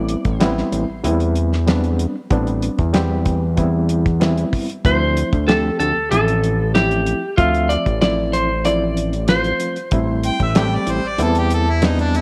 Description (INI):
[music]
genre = straight-eighth soul blues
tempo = 95 BPM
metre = 4/4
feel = straight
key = A minor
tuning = A4 = 440 Hz
[part]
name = clean lap steel guitar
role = melody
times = 0.0-1.0, 4.9-11.2 s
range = F4 to D5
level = -22 LUFS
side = equal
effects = none
[part]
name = overdriven reed electric piano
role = accompaniment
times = 0.0-12.2 s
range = F3 to E5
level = -24 LUFS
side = equal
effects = fast tremolo
[part]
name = fat analog bass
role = bass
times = 0.0-12.2 s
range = A1 to E2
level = -22 LUFS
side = equal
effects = none
[part]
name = damped 70s drum kit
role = drums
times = 0.1-12.2 s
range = hi-hat, kick drum, snare drum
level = -23 LUFS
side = equal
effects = none
[part]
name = bright harmonica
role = second line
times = 10.3-12.2 s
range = D4 to G5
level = -24 LUFS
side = equal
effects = overdrive
[sound]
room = light reverb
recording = none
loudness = -18 LUFS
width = mono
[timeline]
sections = 0.0-12.2 A section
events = none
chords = 0.0 Am7; 4.8 Dm7; 9.9 Am7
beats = 0.41 1.04 1.68 | 2.31 2.95 3.58 4.21 | 4.85 5.48 6.12 6.75 | 7.39 8.02 8.65 9.29 | 9.92 10.56 11.19 11.82